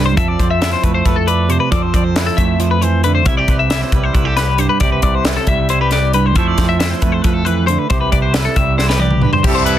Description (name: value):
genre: math rock and midwest emo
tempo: 272 BPM (eighths)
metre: 7/8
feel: straight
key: C major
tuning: A4 = 440 Hz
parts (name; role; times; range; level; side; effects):
- twangy electric guitar; accompaniment; 0.0-9.8 s; G2 to D5; -19 LUFS; right 8 dB; none
- twelve-string electric guitar; arpeggios; 0.0-9.8 s; G4 to E5; -18 LUFS; left 6 dB; wide subtle chorus
- growling picked electric bass; bass; 0.0-9.8 s; C2 to F2; -18 LUFS; equal; overdrive
- crisp fusion drum kit; drums; 0.2-9.8 s; crash cymbal, hi-hat, kick drum, snare drum, toms; -17 LUFS; equal; none
room: little or no reverb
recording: dense, heavily limited modern master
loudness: -12 LUFS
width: side -11 dB against mid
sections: 0.0-9.4 A section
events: drum fill 8.8-9.4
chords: 0.2 Fmaj7; 3.3 Cmaj9; 6.4 Fmaj7; 7.9 Cmaj7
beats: | 0.17 0.39 0.61 0.83 1.05 1.27 1.49 | 1.71 1.94 2.16 2.38 2.60 2.82 3.04 | 3.26 3.48 3.70 3.92 4.14 4.37 4.59 | 4.81 5.03 5.25 5.47 5.69 5.91 6.13 | 6.36 6.58 6.80 7.02 7.24 7.46 7.68 | 7.90 8.12 8.34 8.56 8.78 9.00 9.22 | 9.44 9.66